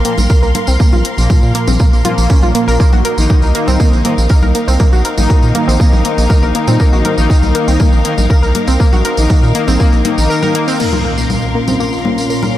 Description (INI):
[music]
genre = melodic techno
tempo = 120 BPM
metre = 4/4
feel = straight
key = unclear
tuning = A4 = 440 Hz
[part]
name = analog pluck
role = arpeggios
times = 0.0-12.6 s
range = Bb3 to Bb4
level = -18 LUFS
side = equal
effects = chorus, sidechain pumping, analog delay
[part]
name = analog synth brass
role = stabs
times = 0.0-10.8 s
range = Bb2 to Eb4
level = -19 LUFS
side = left 2 dB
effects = chorus, cassette tape, sidechain pumping, analog delay
[part]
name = round analog bass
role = bass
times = 0.0-10.3 s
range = Bb1 to Bb2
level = -13 LUFS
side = equal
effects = sidechain pumping
[part]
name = house drum kit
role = drums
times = 0.0-12.5 s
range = congas, crash cymbal, hi-hat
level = -22 LUFS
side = left 2 dB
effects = none
[part]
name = rich studio string section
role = texture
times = 0.0-12.6 s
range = Eb4 to C6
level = -22 LUFS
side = left 2 dB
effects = sidechain pumping
[part]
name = tambourine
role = percussion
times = 0.2-12.5 s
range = none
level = -26 LUFS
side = right 3 dB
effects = none
[part]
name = electronic kick drum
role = drums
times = 0.3-9.9 s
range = none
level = -10 LUFS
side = equal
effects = none
[part]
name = sweeping resonant pad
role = sustained chords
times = 10.8-12.6 s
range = Bb2 to F4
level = -19 LUFS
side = equal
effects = chorus, sidechain pumping
[part]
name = impact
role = sound effects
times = 10.8-12.6 s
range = none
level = -22 LUFS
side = equal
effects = none
[sound]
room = light reverb, digital ambience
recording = none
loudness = -10 LUFS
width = side -13 dB against mid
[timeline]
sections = 0.0-10.8 A section; 10.8-12.6 B section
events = filter sweep on synth pluck 0.0-10.8, 10.8-12.6; impact 10.8-12.6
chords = 0.0 Bb5; 2.8 Eb5/Bb; 10.8 Bbm